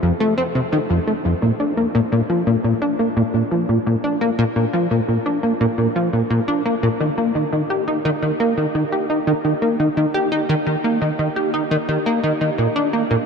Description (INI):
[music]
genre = ambient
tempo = 86 BPM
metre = 4/4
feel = straight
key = Bb major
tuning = A4 = 439 Hz
[part]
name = plucky analog bass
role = solo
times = 0.0-13.2 s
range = F2 to G4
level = -17 LUFS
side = equal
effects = wide subtle chorus, ping-pong delay
[sound]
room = wet huge ambient reverb, RT60 9.1 s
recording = dark, warm production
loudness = -17 LUFS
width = side -5 dB against mid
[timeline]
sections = 0.0-13.3 A section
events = none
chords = none